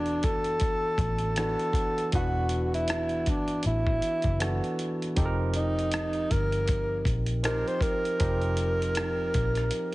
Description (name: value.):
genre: R&B, neo-soul.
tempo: 79 BPM.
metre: 4/4.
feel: swing 58% on 16ths.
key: unclear.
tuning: A4 = 440 Hz.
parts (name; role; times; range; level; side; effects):
breathy tenor saxophone; melody; 0.0-9.9 s; D4 to C5; -29 LUFS; equal; none.
barky tine electric piano; accompaniment; 0.0-9.9 s; E3 to D5; -33 LUFS; right 2 dB; overdrive.
vintage muted fingered electric bass; bass; 0.0-9.7 s; E1 to Bb1; -30 LUFS; equal; none.
dusty soul sampler-style drum kit; drums; 0.1-9.9 s; hi-hat, kick drum, rim click; -31 LUFS; equal; none.
room: light reverb.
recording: heavily compressed radio sound, nothing above 10.7 kHz.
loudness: -25 LUFS.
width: side -19 dB against mid.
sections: 0.0-9.9 A section.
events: none.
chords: 0.0 E9sus4; 5.2 F9sus4.